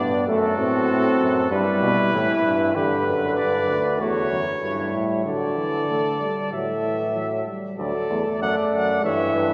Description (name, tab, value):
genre	classical, imitative canzona for brass ensemble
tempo	96 BPM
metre	4/4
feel	straight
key	D major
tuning	A4 = 439 Hz
part	clear trumpet	melody	0.0-9.5 s	A4 to F#5	-29 LUFS	equal	none
part	warm flugelhorn	second line	0.0-9.5 s	D4 to D5	-28 LUFS	equal	none
part	mellow trombone	accompaniment	0.0-9.5 s	D3 to C4	-27 LUFS	equal	none
part	clear euphonium	bass	0.0-9.5 s	D2 to D3	-30 LUFS	equal	none
room	wet church reverb, RT60 3.8 s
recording	recorded in a church or concert hall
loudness	-22 LUFS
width	mono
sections	0.0-7.8 A section; 7.8-9.5 B section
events	none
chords	0.3 F#dim; 1.5 Em/G; 2.8 G; 4.0 Em; 5.3 Asus4/D; 6.5 A5; 7.8 D